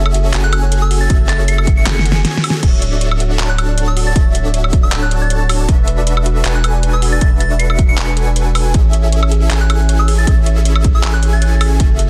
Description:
future bass; 157 BPM; 4/4; swing 54% on 16ths, half-time; A major; A4 = 440 Hz
airy dreamy lead; arpeggios; 0.0-12.1 s; E5 to A5; -31 LUFS; equal; chorus, sidechain pumping
supersaw chords; riff; 0.0-12.1 s; C#4 to A5; -26 LUFS; equal; sidechain pumping
saturated sub bass; bass; 0.0-12.1 s; D1 to A1; -17 LUFS; equal; sidechain pumping
thumb-piano-like synth pluck; arpeggios; 0.1-12.0 s; F#4 to F#5; -31 LUFS; equal; chorus, sidechain pumping, delay
pop drum kit; drums; 0.1-12.1 s; crash cymbal, handclaps, hi-hat, snare drum, woodblock; -22 LUFS; equal
soft synth bell; melody; 0.4-11.8 s; E6 to C#7; -26 LUFS; equal; chorus, phaser, sidechain pumping, delay
electronic kick drum; drums; 1.1-11.9 s; -15 LUFS; equal
little or no reverb; dense, heavily limited modern master; -14 LUFS; mono
0.0-12.1 A section
drum fill 1.9-2.6
0.0 F#m9; 2.6 Dmaj9; 5.7 E9sus4; 8.7 Amaj7
0.34 0.72 | 1.10 1.48 1.86 2.25 | 2.63 3.01 3.39 3.77 | 4.16 4.54 4.92 5.30 | 5.69 6.07 6.45 6.83 | 7.21 7.60 7.98 8.36 | 8.74 9.12 9.51 9.89 | 10.27 10.65 11.04 11.42 | 11.80

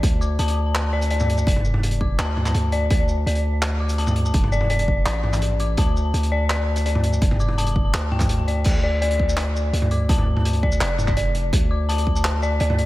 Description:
half-time drum and bass; 167 BPM; 4/4; half-time; A4 = 442 Hz
dark detuned synth bell; arpeggios; 0.0-12.9 s; D5 to D6; -26 LUFS; left 3 dB; chorus, tape echo
long sustained 808-style bass; bass; 0.0-12.9 s; F1 to D2; -22 LUFS; equal
crunchy breakbeat drum kit; drums; 0.0-12.9 s; crash cymbal, handclaps, hi-hat, shaker, toms; -25 LUFS; equal
electronic kick drum; drums; 0.0-12.1 s; -21 LUFS; equal
light reverb; -18 LUFS; side -17 dB against mid
0.0-8.7 A section; 8.7-12.9 A section
drop 0.0-8.7, 8.7-12.9
0.0 D5
| 0.03 0.39 0.75 1.11 | 1.47 1.83 2.19 2.55 | 2.90 3.27 3.62 3.98 | 4.34 4.70 5.06 5.42 | 5.78 6.14 6.50 6.86 | 7.22 7.58 7.93 8.29 | 8.65 9.01 9.37 9.73 | 10.09 10.45 10.81 11.17 | 11.53 11.89 12.25 12.61

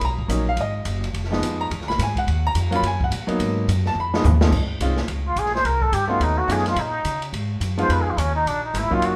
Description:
jazz, small-group swing and bop; 213 BPM; 4/4; swing 62% on 8ths; Db major from 4.5 s; A4 = 439 Hz
clear baby grand piano; accompaniment; 0.0-9.2 s; C#2 to B5; -26 LUFS; equal
upright bass; bass; 0.0-9.2 s; F1 to Db3; -26 LUFS; equal
open jazz drum kit; drums; 0.0-9.1 s; crash cymbal, hi-hat, kick drum, ride cymbal, snare drum, toms; -30 LUFS; equal
trumpet with plunger mute; melody; 5.3-9.2 s; Db4 to C5; -24 LUFS; equal
moderate large studio reverb, RT60 1.0 s; -22 LUFS; mono
0.0-4.5 A section; 4.5-9.2 A section
drum fill 4.0-4.5; muted trumpet solo 4.5-9.2
0.0 Bmaj7; 1.1 Fm7b5; 1.7 E7; 2.3 D#m; 3.4 G#m7; 4.0 C#7; 4.5 Dbmaj7; 5.6 Cm; 6.2 Cb9; 6.8 Bbm7; 7.9 Fm7b5; 8.5 Bb5
| 0.01 0.29 0.57 0.86 | 1.14 1.42 1.70 1.98 | 2.26 2.54 2.83 3.11 | 3.39 3.67 3.95 4.23 | 4.51 4.80 5.08 5.36 | 5.64 5.92 6.20 6.49 | 6.77 7.05 7.33 7.61 | 7.89 8.17 8.46 8.74 | 9.02

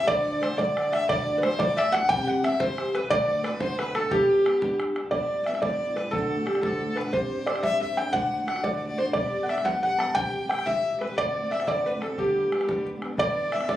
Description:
celtic folk, Celtic jig; 119 BPM (dotted quarters); 6/8; straight; G major; A4 = 443 Hz
felt-muted upright piano; melody; 0.0-13.8 s; G4 to A5; -24 LUFS; equal; plate reverb
rich fiddle; second line; 0.0-13.8 s; G4 to G5; -32 LUFS; left 2 dB
fingerpicked twelve-string acoustic guitar; accompaniment; 0.0-13.8 s; D2 to C5; -32 LUFS; equal
bodhran; percussion; 0.0-13.8 s; -34 LUFS; equal
wet studio reverb, RT60 0.7 s; recorded on a phone in the room, club ambience, compression; -23 LUFS; side -13 dB against mid
0.0-5.1 A section; 5.1-13.2 B section
0.1 D; 1.1 Dadd9; 2.1 C; 3.1 D; 4.1 G; 5.1 G6; 6.1 D; 7.1 Csus2; 8.1 D; 9.2 G; 10.2 C; 11.2 D7; 12.2 Gadd9; 13.2 G6
| 0.08 0.59 | 1.09 1.59 | 2.10 2.60 | 3.10 3.60 | 4.11 4.61 | 5.12 5.62 | 6.12 6.63 | 7.13 7.64 | 8.14 8.65 | 9.15 9.66 | 10.16 10.67 | 11.17 11.68 | 12.18 12.69 | 13.19 13.69

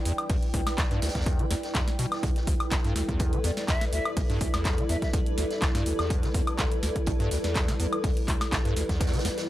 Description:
acid house; 124 BPM; 4/4; swing 53% on 16ths; E minor; A4 = 440 Hz
dark analog pad; sustained chords; 0.0-9.5 s; G3 to D5; -35 LUFS; equal; chorus, phaser, sidechain pumping
granular cloud pad; texture; 0.0-9.5 s; E4 to G5; -36 LUFS; equal; built-in reverb, sidechain pumping
acid bass, square; riff; 0.1-9.3 s; D2 to E3; -30 LUFS; equal; ensemble chorus
booming analog drum machine; drums; 0.1-9.5 s; handclaps, hi-hat, snare drum, woodblock; -32 LUFS; left 1 dB
vintage drum kit; drums; 0.1-9.5 s; hi-hat, snare drum; -40 LUFS; right 2 dB; sidechain pumping on hats, high-pass filter on hats, high-pass filter on snare, high-pass filter on room
electronic kick drum; drums; 0.3-9.1 s; -28 LUFS; equal
breathy concert flute; melody; 3.4-5.1 s; D5 to E5; -36 LUFS; left 2 dB; analog delay
digital ambience; dry, gritty hardware recording; -24 LUFS; side -14 dB against mid
0.0-9.5 A section
0.0 Em7
| 0.30 0.78 1.26 1.75 | 2.23 2.72 3.20 3.68 | 4.17 4.65 5.14 5.62 | 6.10 6.59 7.07 7.55 | 8.04 8.52 9.01 9.49

